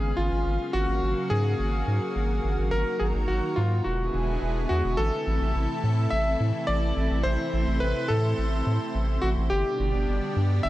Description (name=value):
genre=synthwave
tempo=106 BPM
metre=4/4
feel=straight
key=A minor from 5.0 s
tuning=A4 = 440 Hz
part: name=clear electric grand piano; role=melody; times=0.0-10.7 s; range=E#4 to E5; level=-29 LUFS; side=left 1 dB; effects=digital delay
part: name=lush unison pad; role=sustained chords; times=0.0-10.7 s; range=B2 to E#5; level=-30 LUFS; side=equal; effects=chorus, vintage 12-bit sampler grit
part: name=round analog bass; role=bass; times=0.0-10.7 s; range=E1 to A2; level=-26 LUFS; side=equal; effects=none
room=moderate recital hall reverb, RT60 1.9 s, digital ambience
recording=dark, warm production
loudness=-23 LUFS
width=side -16 dB against mid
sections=0.0-5.0 A section; 5.0-10.7 B section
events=none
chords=0.5 F#maj7/G#; 2.7 D#m/G#; 3.9 E7; 5.0 Am; 9.5 G